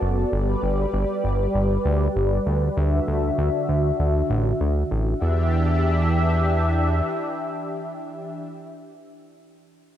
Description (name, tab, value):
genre	synthwave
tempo	98 BPM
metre	4/4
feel	straight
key	E minor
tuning	A4 = 439 Hz
part	warm analog pad	sustained chords	0.0-8.4 s	D3 to E5	-24 LUFS	equal	chorus
part	fat analog bass	bass	0.0-7.0 s	F#1 to E2	-21 LUFS	equal	none
room	moderate plate reverb, RT60 3.4 s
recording	bright 1980s-style digital production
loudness	-20 LUFS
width	side -11 dB against mid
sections	0.0-5.2 A section; 5.2-7.7 B section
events	filter sweep on analog synth pad 0.0-5.2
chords	0.3 G; 2.8 Dadd9; 5.2 Em7